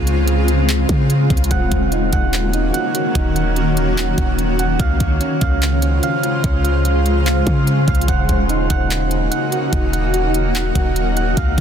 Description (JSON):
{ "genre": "hip hop, atmospheric cloud-rap", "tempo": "146 BPM", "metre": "4/4", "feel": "half-time", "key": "Eb dorian", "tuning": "A4 = 441 Hz", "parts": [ { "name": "granular cloud pad", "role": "sustained chords", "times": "0.0-11.6 s", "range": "Db3 to C5", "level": "-19 LUFS", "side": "left 1 dB", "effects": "built-in reverb, sidechain pumping" }, { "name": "warm 808-style bass", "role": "bass", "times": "0.0-11.6 s", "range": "Eb1 to Db3", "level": "-18 LUFS", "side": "equal", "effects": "none" }, { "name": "trap drum kit", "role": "drums", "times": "0.1-11.6 s", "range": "handclaps, hi-hat, kick drum", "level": "-21 LUFS", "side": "equal", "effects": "none" }, { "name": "soft electric-piano-like synth keys", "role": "arpeggios", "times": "1.5-11.6 s", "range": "Db4 to Gb5", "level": "-23 LUFS", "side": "right 6 dB", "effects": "chorus, low-pass filter, ping-pong delay" }, { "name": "riser", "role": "sound effects", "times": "11.4-11.6 s", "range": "none", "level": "barely audible", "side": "none", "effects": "none" } ], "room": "little or no reverb", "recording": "dense, heavily limited modern master", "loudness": "-14 LUFS", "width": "side -8 dB against mid", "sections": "0.0-11.6 A section", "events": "none", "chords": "0.0 Dbmaj7; 1.5 Ebm7; 4.8 Dbmaj7; 8.1 Ebm7", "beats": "0.28 0.69 1.10 | 1.51 1.92 2.33 2.74 | 3.15 3.56 3.97 4.38 | 4.80 5.21 5.62 6.03 | 6.44 6.85 7.26 7.67 | 8.08 8.49 8.91 9.32 | 9.73 10.14 10.55 10.96 | 11.37" }